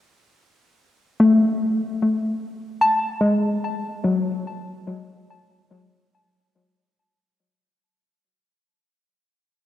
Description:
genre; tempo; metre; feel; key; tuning
ambient; free time; none; none; F# minor; A4 = 441 Hz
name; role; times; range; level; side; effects
soft round pluck; solo; 1.2-8.1 s; F#3 to A5; -19 LUFS; left 2 dB; chorus, cassette tape, tape echo
room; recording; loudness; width
wet lush hall reverb, RT60 2.9 s; home recording on cassette; -19 LUFS; side -12 dB against mid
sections
0.0-7.9 A section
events
fade-out 0.0-7.9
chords
0.0 N.C.; 1.2 F#madd9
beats
free time

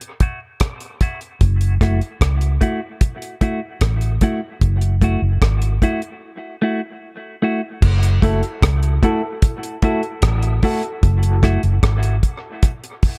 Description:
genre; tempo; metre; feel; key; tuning
dub reggae; 75 BPM; 4/4; straight; F# minor; A4 = 440 Hz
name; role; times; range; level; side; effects
deep reggae drum kit; drums; 0.0-13.2 s; crash cymbal, hi-hat, kick drum, rim click; -20 LUFS; equal; none
clean electric guitar; accompaniment; 0.2-11.6 s; A3 to F#4; -26 LUFS; equal; high-pass filter, low-pass filter, dub echo
vintage muted fingered electric bass; bass; 1.4-12.2 s; F#1 to C#2; -19 LUFS; equal; none
dark upright piano; stabs; 8.2-10.9 s; E4 to A4; -28 LUFS; equal; high-pass filter, low-pass filter, dub echo
room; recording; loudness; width
studio reverb; echo-heavy mix; -19 LUFS; mono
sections
0.0-7.8 A section; 7.8-13.2 B section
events
break 0.0-7.8; filter sweep 0.0-7.8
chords
0.0 F#m7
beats
0.61 | 1.41 2.21 3.01 3.82 | 4.62 5.42 6.22 7.02 | 7.82 8.62 9.42 10.22 | 11.03 11.83 12.63

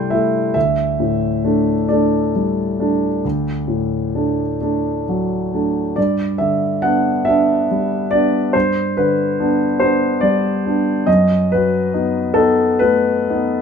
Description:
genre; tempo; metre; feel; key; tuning
classical, romantic nocturne for solo piano; 39-48 BPM (dotted quarters); 12/8; rubato; G major; A4 = 441 Hz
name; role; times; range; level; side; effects
warm concert grand piano; solo; 0.0-13.6 s; C2 to G5; -15 LUFS; equal; none
room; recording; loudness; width
light reverb; minimal, uncompressed stereo recording; -15 LUFS; side -6 dB against mid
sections
0.0-13.6 A section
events
none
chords
0.0 Am7/C; 0.6 Dsus4; 3.2 D; 6.0 G; 11.1 B7/F#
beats
| 0.55 1.90 3.24 4.60 | 5.97 7.28 8.54 9.80 | 11.07 12.34

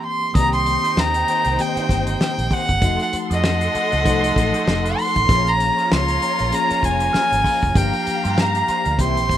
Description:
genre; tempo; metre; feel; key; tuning
lush 1970s-style soul; 97 BPM; 4/4; swing 58% on 16ths; unclear; A4 = 440 Hz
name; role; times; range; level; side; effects
warm studio violin section; second line; 0.0-9.4 s; Eb4 to C6; -26 LUFS; equal; none
mellow tine electric piano; accompaniment; 0.0-9.4 s; Eb3 to A4; -26 LUFS; left 2 dB; medium stereo tremolo
electric guitar through a small old amp; riff; 0.0-9.3 s; G3 to Eb5; -34 LUFS; right 3 dB; wah, wide subtle chorus
dark violin; melody; 0.1-9.4 s; Eb5 to C6; -20 LUFS; equal; none
glockenspiel with rubber mallets; texture; 0.3-2.5, 7.1-8.0 s; Eb6 to F6; -34 LUFS; equal; stereo widening
vintage muted fingered electric bass; bass; 0.4-9.4 s; F1 to G2; -23 LUFS; equal; none
warm soul drum kit; drums; 0.4-9.4 s; hi-hat, kick drum, snare drum; -22 LUFS; equal; none
room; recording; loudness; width
light reverb; rough home demo mix; -16 LUFS; side -11 dB against mid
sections
0.3-9.4 A section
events
break 0.0-0.3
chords
0.3 Cm7; 2.8 F7b9; 5.3 Bbm7; 7.8 Gm7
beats
| 0.35 0.97 1.59 2.20 | 2.82 3.44 4.05 4.67 | 5.29 5.91 6.52 7.14 | 7.75 8.37 8.99

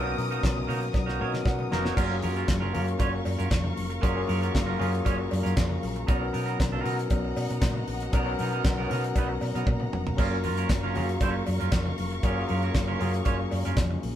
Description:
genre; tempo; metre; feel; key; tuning
disco; 117 BPM; 4/4; straight; F# major; A4 = 439 Hz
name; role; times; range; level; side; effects
clean electric guitar; accompaniment; 0.0-13.9 s; F#3 to C#5; -34 LUFS; right 6 dB; none
overdriven tine electric piano; accompaniment; 0.0-14.2 s; F#3 to F#5; -31 LUFS; left 3 dB; none
warm studio string section; sustained chords; 0.0-14.2 s; B3 to D#6; -38 LUFS; left 1 dB; none
hollow-body short-scale fingered electric bass; bass; 0.0-14.2 s; E#1 to B2; -30 LUFS; equal; none
damped 70s drum kit; drums; 0.2-14.2 s; crash cymbal, handclaps, hi-hat, kick drum, snare drum, splash cymbal, toms; -28 LUFS; equal; none
congas; percussion; 0.2-14.2 s; none; -39 LUFS; left 5 dB; none
cowbell; percussion; 0.4-13.9 s; none; -40 LUFS; equal; none
room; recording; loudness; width
moderate stone room reverb, RT60 1.1 s; band playing live in one room; -24 LUFS; side -11 dB against mid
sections
0.0-2.0 A section; 2.0-14.2 B section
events
drum fill 0.9-2.0, 9.7-10.2; tine electric piano fill 1.2-2.0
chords
0.0 Bmaj7; 2.0 F#maj7; 6.1 Bmaj7; 10.2 F#maj7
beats
0.43 0.95 1.46 | 1.97 2.49 3.00 3.52 | 4.03 4.54 5.06 5.57 | 6.08 6.59 7.11 7.62 | 8.13 8.64 9.16 9.67 | 10.18 10.69 11.21 11.72 | 12.23 12.74 13.25 13.77

